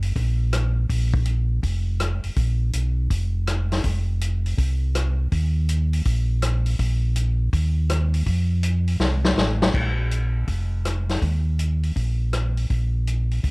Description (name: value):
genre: soul jazz organ trio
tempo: 163 BPM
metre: 4/4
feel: swing 66% on 8ths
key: unclear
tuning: A4 = 440 Hz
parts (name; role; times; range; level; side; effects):
- mellow tonewheel organ; bass; 0.0-13.5 s; F1 to F2; -21 LUFS; equal; chorus vibrato, slow rotary speaker
- vintage drum kit; drums; 0.0-13.5 s; crash cymbal, hi-hat, kick drum, rim click, snare drum; -25 LUFS; left 1 dB; none
room: little or no reverb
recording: none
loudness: -20 LUFS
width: side -28 dB against mid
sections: 0.0-9.7 A section; 9.7-13.5 B section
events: drum fill 9.0-9.7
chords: none